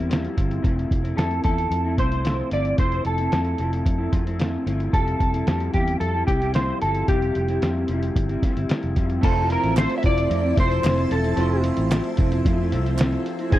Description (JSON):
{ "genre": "indie pop, bedroom pop", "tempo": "112 BPM", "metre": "4/4", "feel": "straight", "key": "F major", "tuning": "A4 = 439 Hz", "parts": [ { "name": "electric guitar through a small old amp", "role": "accompaniment", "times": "0.0-13.6 s", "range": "Ab2 to E4", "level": "-27 LUFS", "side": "left 1 dB", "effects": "analog chorus, vibrato effect" }, { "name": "vintage muted fingered electric bass", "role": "bass", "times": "0.0-13.6 s", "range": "E1 to F2", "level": "-25 LUFS", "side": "equal", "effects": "none" }, { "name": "lo-fi sampler-style drum kit", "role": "drums", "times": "0.1-13.6 s", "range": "crash cymbal, hi-hat, kick drum, snare drum", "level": "-23 LUFS", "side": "equal", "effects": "none" }, { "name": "clean electric guitar", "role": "melody", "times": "1.2-13.6 s", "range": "G4 to E5", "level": "-26 LUFS", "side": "equal", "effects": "ensemble chorus" }, { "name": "chorused retro synth keys", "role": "accompaniment", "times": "9.2-13.6 s", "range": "Ab3 to C5", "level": "-29 LUFS", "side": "right 5 dB", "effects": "phaser, cassette tape" }, { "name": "string machine, violins", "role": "sustained chords", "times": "9.2-13.6 s", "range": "F3 to A5", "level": "-33 LUFS", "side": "equal", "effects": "ensemble chorus" }, { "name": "group handclap", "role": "percussion", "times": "9.8-13.1 s", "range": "none", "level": "-35 LUFS", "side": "right 9 dB", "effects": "none" } ], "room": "little or no reverb", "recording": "dry, close 1970s-style studio recording", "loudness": "-20 LUFS", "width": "side -14 dB against mid", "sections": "0.0-9.2 A section; 9.2-13.6 B section", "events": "none", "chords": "0.0 C; 0.6 Fmaj7; 4.9 C/F; 9.2 Fmaj7" }